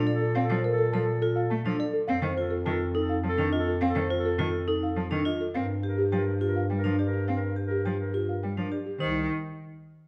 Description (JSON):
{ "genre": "classical, minimalist pattern music", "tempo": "104 BPM", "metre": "3/4", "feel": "straight", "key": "C dorian", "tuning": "A4 = 445 Hz", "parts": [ { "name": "warm clarinet", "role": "second line", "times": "0.0-8.8 s", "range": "A4 to Bb4", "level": "-37 LUFS", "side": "equal", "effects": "none" }, { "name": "clear cello", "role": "accompaniment", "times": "0.0-9.3 s", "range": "Eb3 to C4", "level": "-35 LUFS", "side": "equal", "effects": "none" }, { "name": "vibraphone with hard mallets", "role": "arpeggios", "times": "0.0-9.3 s", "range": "D4 to C5", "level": "-34 LUFS", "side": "equal", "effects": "none" }, { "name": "mellow bass clarinet", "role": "bass", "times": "0.0-9.3 s", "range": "C2 to Bb2", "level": "-33 LUFS", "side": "equal", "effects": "none" }, { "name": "buzzing marimba with soft mallets", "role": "melody", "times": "0.1-9.3 s", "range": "G4 to A5", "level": "-34 LUFS", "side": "equal", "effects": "none" } ], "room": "moderate recital hall reverb, RT60 1.3 s", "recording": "dark, warm production", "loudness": "-28 LUFS", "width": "mono", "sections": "0.0-9.0 A section; 9.0-10.1 B section", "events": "none", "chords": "0.0 Bbmaj7; 2.1 F7; 5.5 Gm7; 9.0 Cm" }